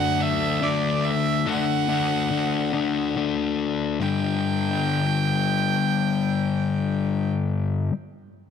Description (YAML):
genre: rock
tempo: 47 BPM (dotted quarters)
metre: 6/8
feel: straight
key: unclear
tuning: A4 = 440 Hz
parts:
  - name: clear violin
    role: melody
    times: 0.0-7.3 s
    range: D5 to G5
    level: -27 LUFS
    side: right 8 dB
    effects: analog delay
  - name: evolving wavetable pad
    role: sustained chords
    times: 0.0-1.4 s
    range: F#2 to D5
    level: -36 LUFS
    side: right 2 dB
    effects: ensemble chorus, built-in reverb, phaser
  - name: sludgy distorted guitar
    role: riff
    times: 0.0-7.9 s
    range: G2 to D4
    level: -22 LUFS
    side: left 6 dB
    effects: overdrive
room: light reverb, small room ambience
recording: dark, warm production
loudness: -21 LUFS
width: side -7 dB against mid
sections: 0.0-4.0 A section; 4.0-6.5 B section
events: none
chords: 0.0 D/F#; 4.0 G5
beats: 0.20 | 1.47 2.74 | 4.01 5.28